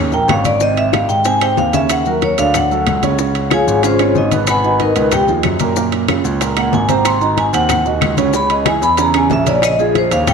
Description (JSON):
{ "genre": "Afro-Cuban jazz", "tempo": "186 BPM", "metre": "4/4", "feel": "straight", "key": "Ab major", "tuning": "A4 = 440 Hz", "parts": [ { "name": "warm grand piano", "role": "accompaniment", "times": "0.0-10.3 s", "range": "Bb2 to Db6", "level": "-18 LUFS", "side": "right 9 dB", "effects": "none" }, { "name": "dark grand piano", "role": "bass", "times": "0.0-10.3 s", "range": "Ab1 to Ab2", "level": "-20 LUFS", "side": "equal", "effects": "none" }, { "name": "vibraphone with medium hard mallets", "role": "melody", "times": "0.1-10.3 s", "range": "C4 to C6", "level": "-16 LUFS", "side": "left 2 dB", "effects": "tape echo" }, { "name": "bongos", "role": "percussion", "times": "0.1-10.3 s", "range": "none", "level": "-25 LUFS", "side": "left 11 dB", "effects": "none" }, { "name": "congas", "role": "percussion", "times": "0.1-10.3 s", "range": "none", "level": "-23 LUFS", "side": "left 10 dB", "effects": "none" }, { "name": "maracas", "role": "percussion", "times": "0.1-10.3 s", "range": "none", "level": "-30 LUFS", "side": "left 14 dB", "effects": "none" }, { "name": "claves", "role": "percussion", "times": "0.3-10.3 s", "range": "none", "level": "-29 LUFS", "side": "left 13 dB", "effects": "none" }, { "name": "timbales", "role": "percussion", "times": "0.3-10.3 s", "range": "none", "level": "-24 LUFS", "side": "right 10 dB", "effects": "none" } ], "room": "moderate echo chamber reverb, RT60 1.8 s, studio ambience", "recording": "1960s-style stereo with parts hard left and right", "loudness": "-12 LUFS", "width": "side -6 dB against mid", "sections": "0.6-10.3 A section", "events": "vibraphone solo 0.0-10.3", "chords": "0.0 Eb5; 0.6 Abmaj7; 1.9 Ebm7; 2.5 D; 3.2 Dbmaj7; 4.5 Abm9; 5.1 Db7; 5.8 Gbmaj9; 7.1 Ab7; 8.3 Dbm; 9.6 Bbm7", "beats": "0.29 | 0.61 0.93 1.25 1.58 | 1.90 2.22 2.54 2.87 | 3.19 3.51 3.83 4.16 | 4.48 4.80 5.12 5.45 | 5.77 6.09 6.41 6.73 | 7.06 7.38 7.70 8.02 | 8.34 8.67 8.99 9.31 | 9.63 9.95 10.28" }